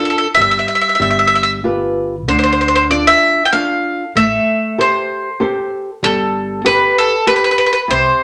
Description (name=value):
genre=italian folk, Italian serenade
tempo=96 BPM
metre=3/4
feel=straight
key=unclear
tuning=A4 = 441 Hz
part: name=bowl-back mandolin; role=melody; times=0.0-8.2 s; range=A4 to G5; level=-15 LUFS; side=equal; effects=none
part: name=flamenco guitar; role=accompaniment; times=0.0-8.2 s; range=C3 to C5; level=-21 LUFS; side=equal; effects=none
part: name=upright bass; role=bass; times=0.4-8.1 s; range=G1 to D2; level=-27 LUFS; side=equal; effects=none
room=wet studio reverb, RT60 0.8 s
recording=none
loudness=-14 LUFS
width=mono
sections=0.0-8.2 A section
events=none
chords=0.4 Em/G; 1.0 G7; 2.3 Dm; 4.2 Am7; 6.0 Gadd9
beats=| 0.38 1.00 1.64 | 2.27 2.90 3.53 | 4.16 4.78 5.40 | 6.02 6.64 7.26 | 7.89